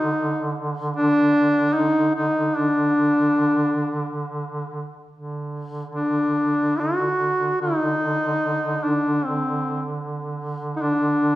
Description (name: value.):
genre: caucasian folk, Caucasian lament.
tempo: 74 BPM.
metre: 3/4.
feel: rubato.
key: unclear.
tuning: A4 = 439 Hz.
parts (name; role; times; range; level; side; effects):
warm duduk; melody; 0.0-11.4 s; C4 to F#4; -19 LUFS; equal; none.
warm duduk; drone; 0.0-11.4 s; D3; -28 LUFS; right 2 dB; none.
room: wet recital hall reverb, RT60 1.4 s.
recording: recorded in a church or concert hall.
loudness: -19 LUFS.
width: side -16 dB against mid.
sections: 0.0-5.1 A section; 5.1-11.4 B section.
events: none.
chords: none.